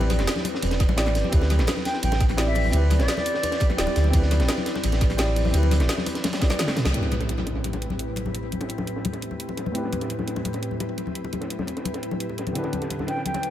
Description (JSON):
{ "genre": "liquid drum and bass", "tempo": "171 BPM", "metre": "4/4", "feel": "straight", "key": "A minor", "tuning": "A4 = 440 Hz", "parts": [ { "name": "dark concert grand piano", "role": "accompaniment", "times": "0.0-13.5 s", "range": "A2 to D5", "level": "-30 LUFS", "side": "equal", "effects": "analog delay" }, { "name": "glassy FM pad", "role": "sustained chords", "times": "0.0-13.5 s", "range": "A2 to B4", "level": "-32 LUFS", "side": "equal", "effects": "ensemble chorus, built-in reverb" }, { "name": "sub bass with octave", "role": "bass", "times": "0.0-6.9 s", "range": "D1 to D2", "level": "-22 LUFS", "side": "equal", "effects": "none" }, { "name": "congas", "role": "percussion", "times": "0.0-13.4 s", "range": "none", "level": "-32 LUFS", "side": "left 4 dB", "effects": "tape echo" }, { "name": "crunchy breakbeat drum kit", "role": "drums", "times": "0.1-13.5 s", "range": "hi-hat, snare drum", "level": "-33 LUFS", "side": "equal", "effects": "high-pass filter on hats, low-pass filter on hats, high-pass filter on snare, low-pass filter on snare, high-pass filter on room, low-pass filter on room, tape echo" }, { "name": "drum and bass drum kit", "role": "drums", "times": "0.1-13.5 s", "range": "hi-hat, ride cymbal, snare drum, toms", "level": "-30 LUFS", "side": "right 1 dB", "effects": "tape echo" }, { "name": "electronic kick drum", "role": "drums", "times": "0.8-6.5 s", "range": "none", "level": "-21 LUFS", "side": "equal", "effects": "none" }, { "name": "mellow silver concert flute", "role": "melody", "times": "1.9-3.7, 13.1-13.5 s", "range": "D5 to G5", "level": "-30 LUFS", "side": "left 1 dB", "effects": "tape echo" }, { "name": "impact", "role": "sound effects", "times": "6.9-8.3 s", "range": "none", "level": "-31 LUFS", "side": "right 1 dB", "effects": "none" } ], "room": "light reverb, small room ambience", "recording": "echo-heavy mix", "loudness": "-22 LUFS", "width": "side -12 dB against mid", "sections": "0.0-6.9 A section; 6.9-13.5 B section", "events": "drop 0.0-6.9; drum fill 6.2-6.9; band accent 6.9; impact 6.9-8.3; filter sweep on ambient pad 6.9-13.5", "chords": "0.0 Am9; 1.3 D13sus4; 6.9 Am9; 12.6 D13sus4", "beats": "0.28 0.63 0.98 | 1.33 1.68 2.03 2.38 | 2.73 3.08 3.43 3.78 | 4.13 4.49 4.84 5.19 | 5.54 5.89 6.24 6.59 | 6.94 7.29 7.64 8.00 | 8.35 8.70 9.05 9.40 | 9.75 10.10 10.45 10.80 | 11.15 11.50 11.85 12.21 | 12.56 12.91 13.26" }